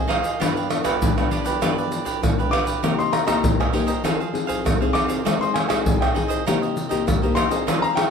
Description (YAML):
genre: samba and choro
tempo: 99 BPM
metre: 4/4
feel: straight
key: C minor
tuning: A4 = 440 Hz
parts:
  - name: warm concert grand piano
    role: melody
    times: 0.0-8.1 s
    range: F5 to D6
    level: -25 LUFS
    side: left 3 dB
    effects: none
  - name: cavaquinho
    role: accompaniment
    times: 0.0-8.0 s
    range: Eb4 to F5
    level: -28 LUFS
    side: right 6 dB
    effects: none
  - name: nylon-string guitar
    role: accompaniment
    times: 0.0-8.1 s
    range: G2 to Ab4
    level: -25 LUFS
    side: left 5 dB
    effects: none
  - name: pandeiro, tamborim, egg shaker and surdo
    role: percussion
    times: 0.1-8.1 s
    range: none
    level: -22 LUFS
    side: equal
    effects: none
room: light reverb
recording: lossy compression artefacts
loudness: -19 LUFS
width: side -6 dB against mid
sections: 0.0-8.1 A section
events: none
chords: 0.4 G7; 2.8 Cm7; 4.0 Fm7; 5.3 Ab; 6.5 Cm7